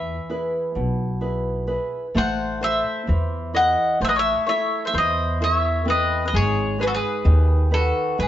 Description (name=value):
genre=greek folk, Greek bouzouki band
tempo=130 BPM (eighths)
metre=9/8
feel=straight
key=unclear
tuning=A4 = 440 Hz
part: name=Greek bouzouki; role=melody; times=0.0-8.3 s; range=A4 to F#5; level=-23 LUFS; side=equal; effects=none
part: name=nylon-string guitar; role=accompaniment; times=0.0-8.3 s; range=B2 to C5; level=-27 LUFS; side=right 1 dB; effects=none
part: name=upright bass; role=bass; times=0.0-8.3 s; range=G#1 to E2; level=-22 LUFS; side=equal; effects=none
part: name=mandolin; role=second line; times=2.2-8.3 s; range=F#4 to D#5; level=-26 LUFS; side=left 4 dB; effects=none
room=moderate stone room reverb, RT60 1.1 s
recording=band playing live in one room, nothing above 7.6 kHz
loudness=-19 LUFS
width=side -12 dB against mid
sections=0.0-2.2 A section; 2.2-8.3 B section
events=none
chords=0.0 E; 2.2 Am; 6.3 G#m